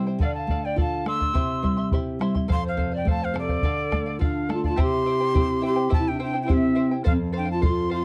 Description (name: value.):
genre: andean folk, Andean ensemble.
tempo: 105 BPM.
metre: 2/4.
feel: straight.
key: unclear.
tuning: A4 = 440 Hz.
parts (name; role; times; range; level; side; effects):
charango; accompaniment; 0.0-8.0 s; E4 to C6; -36 LUFS; equal; none.
nylon-string guitar; accompaniment; 0.0-8.0 s; F2 to A4; -30 LUFS; equal; none.
breathy bright quena; melody; 0.2-8.0 s; D5 to E6; -32 LUFS; equal; none.
pan flute; second line; 0.2-8.0 s; C4 to C6; -29 LUFS; equal; none.
bombo; percussion; 0.2-7.8 s; none; -27 LUFS; equal; none.
room: little or no reverb.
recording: dry, close 1970s-style studio recording.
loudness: -24 LUFS.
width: mono.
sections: 0.0-4.8 A section; 4.8-8.0 B section.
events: none.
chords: 0.2 Dm; 1.3 C; 2.5 F; 3.6 Dm; 4.8 C; 7.1 F.